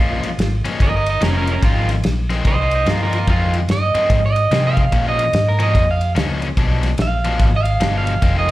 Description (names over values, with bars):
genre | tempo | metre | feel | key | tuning
electric blues shuffle | 146 BPM | 4/4 | swing 63% on 8ths | F minor | A4 = 440 Hz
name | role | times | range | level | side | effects
electric guitar at the edge of break-up | second line | 0.0-8.5 s | Db4 to F5 | -20 LUFS | right 3 dB | slapback echo
cranked stack guitar | riff | 0.0-8.5 s | F2 to D4 | -24 LUFS | left 5 dB | overdrive, slapback echo
vintage muted fingered electric bass | bass | 0.0-8.5 s | F1 to C3 | -19 LUFS | equal | none
warm soul drum kit | drums | 0.2-8.5 s | kick drum, ride cymbal, snare drum | -20 LUFS | equal | none
room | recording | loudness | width
light reverb | live gig heard through the venue's PA, club reverb | -15 LUFS | side -16 dB against mid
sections
0.0-8.5 A section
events
clean electric guitar solo 0.0-8.5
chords
0.0 Bbm7; 1.6 Fm7; 4.9 Bbm7; 6.6 Bdim7